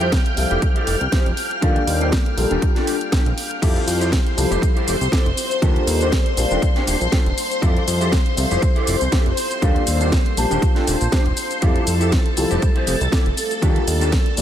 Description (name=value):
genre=filtered disco house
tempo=120 BPM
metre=4/4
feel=swing 55% on 16ths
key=F major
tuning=A4 = 441 Hz
part: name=dark concert grand piano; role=accompaniment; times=0.0-14.4 s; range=F3 to A5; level=-25 LUFS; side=left 2 dB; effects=phaser, sidechain pumping, low-pass filter
part: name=string machine, full ensemble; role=sustained chords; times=0.0-14.4 s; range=A4 to F6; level=-25 LUFS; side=left 1 dB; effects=phaser, ensemble chorus, sidechain pumping, low-pass filter
part: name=mellow electric guitar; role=riff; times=0.0-14.3 s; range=D4 to C5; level=-27 LUFS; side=equal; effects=ensemble chorus, sidechain pumping, low-pass filter
part: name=fat analog bass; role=bass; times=0.0-14.4 s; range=Eb1 to F2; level=-22 LUFS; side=equal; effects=sidechain pumping, low-pass filter
part: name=house drum kit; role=drums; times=0.0-14.4 s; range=crash cymbal, hi-hat, shaker, snare drum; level=-26 LUFS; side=equal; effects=overdrive, sidechain pumping on hats, sidechain pumping on cymbals, sidechain pumping on perc
part: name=electronic kick drum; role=drums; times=0.1-14.2 s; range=none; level=-18 LUFS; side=equal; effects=overdrive
room=light reverb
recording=none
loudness=-16 LUFS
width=side -10 dB against mid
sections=0.0-14.4 A section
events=none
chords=0.0 Fmaj9; 1.6 Ebmaj9#11; 3.6 Fmaj9; 5.6 Ebmaj9#11; 7.6 Fmaj9; 9.6 Ebmaj9#11; 11.6 Fmaj9; 13.6 Ebmaj9#11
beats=0.12 0.62 1.12 | 1.62 2.12 2.62 3.12 | 3.62 4.12 4.62 5.12 | 5.62 6.12 6.62 7.12 | 7.62 8.12 8.62 9.12 | 9.62 10.12 10.62 11.12 | 11.62 12.12 12.62 13.12 | 13.62 14.12